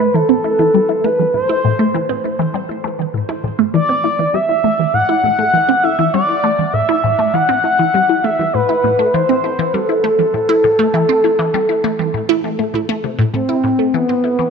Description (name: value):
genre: ambient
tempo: 100 BPM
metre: 4/4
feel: straight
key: A dorian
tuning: A4 = 440 Hz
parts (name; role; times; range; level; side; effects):
- expressive portamento lead; melody; 0.0-14.5 s; B3 to F#5; -15 LUFS; equal; analog chorus, tape echo
- resonant blip pluck; riff; 0.0-14.5 s; A2 to E4; -17 LUFS; equal; phaser, tape echo
room: wet plate reverb, RT60 3.0 s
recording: cassette tape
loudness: -13 LUFS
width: side -5 dB against mid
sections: 0.0-13.3 A section; 13.3-14.5 B section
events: filter sweep on synth arpeggio sound 0.0-13.3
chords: 0.0 Am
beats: 0.14 0.74 | 1.34 1.94 2.54 3.14 | 3.74 4.34 4.94 5.54 | 6.14 6.74 7.34 7.94 | 8.54 9.14 9.74 10.34 | 10.94 11.54 12.14 12.74 | 13.34 13.94